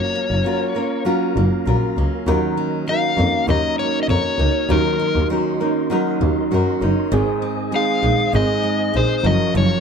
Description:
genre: acoustic pop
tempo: 99 BPM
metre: 4/4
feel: straight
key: unclear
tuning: A4 = 440 Hz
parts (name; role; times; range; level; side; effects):
- overdriven slide guitar; melody; 0.0-9.8 s; Bb4 to F5; -21 LUFS; left 5 dB; plate reverb
- nylon-string guitar; accompaniment; 0.0-9.8 s; Ab2 to Bb4; -21 LUFS; right 1 dB; none
- mellow tonewheel organ; sustained chords; 0.0-9.8 s; Gb4 to Eb6; -32 LUFS; right 1 dB; chorus vibrato, fast rotary speaker
- picked steel-string acoustic guitar; arpeggios; 0.0-9.8 s; Eb3 to Ab4; -27 LUFS; right 6 dB; none
- rich double bass; bass; 0.3-9.6 s; Gb1 to Gb2; -20 LUFS; equal; none
room: light reverb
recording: close, detailed microphones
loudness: -16 LUFS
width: side -6 dB against mid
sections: 0.0-9.8 A section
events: none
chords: 0.0 Gbmaj7; 2.3 Ebm7; 7.1 Ab; 9.2 Gbmaj7

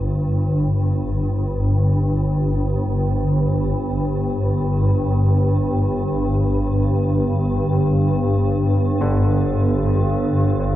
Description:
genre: dark ambient drone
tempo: free time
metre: none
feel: none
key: unclear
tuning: A4 = 441 Hz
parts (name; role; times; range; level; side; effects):
- swarming drone; drone; 0.0-10.8 s; G1 to G2; -17 LUFS; equal; built-in reverb
- bright grand piano; arpeggios; 9.0-10.8 s; D3; -25 LUFS; right 1 dB; diffuse ambient delay
room: wet huge ambient reverb, RT60 7.0 s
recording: worn, warbling old tape, cassette tape, warbly pitch drift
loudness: -17 LUFS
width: side -14 dB against mid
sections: 0.0-10.8 A section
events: none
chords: 0.0 G5

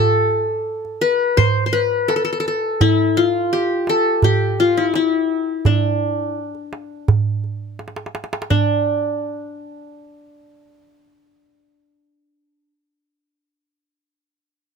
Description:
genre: Turkish makam ensemble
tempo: 84 BPM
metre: 4/4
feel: straight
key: D makam huseyni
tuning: A4 = 440 Hz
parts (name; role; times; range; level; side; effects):
- qanun; melody; 0.0-12.7 s; D4 to C5; -18 LUFS; left 2 dB; none
- darbuka; percussion; 0.3-8.8 s; none; -19 LUFS; right 4 dB; none
room: little or no reverb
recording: close, detailed microphones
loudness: -16 LUFS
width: side -6 dB against mid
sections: 0.0-8.5 A section; 8.5-11.4 B section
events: drum fill 7.8-8.5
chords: none

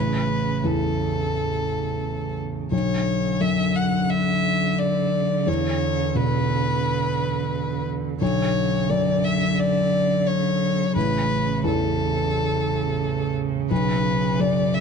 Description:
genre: neoclassical piano and strings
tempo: 87 BPM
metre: 4/4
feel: rubato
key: B minor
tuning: A4 = 436 Hz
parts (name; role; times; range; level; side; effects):
- warm violin; melody; 0.0-14.8 s; A4 to F#5; -25 LUFS; left 2 dB; none
- warm cello; second line; 0.0-14.8 s; C#3 to D3; -26 LUFS; right 12 dB; none
- felt-muted upright piano; accompaniment; 0.0-14.8 s; A1 to B2; -24 LUFS; left 3 dB; none
room: light reverb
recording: dark, warm production, nothing above 10.5 kHz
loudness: -20 LUFS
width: side -6 dB against mid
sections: 0.0-14.8 A section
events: none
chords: 0.0 A; 2.7 Bmadd9; 5.5 E5; 8.2 Bmadd9; 11.0 A; 13.7 Bmadd9

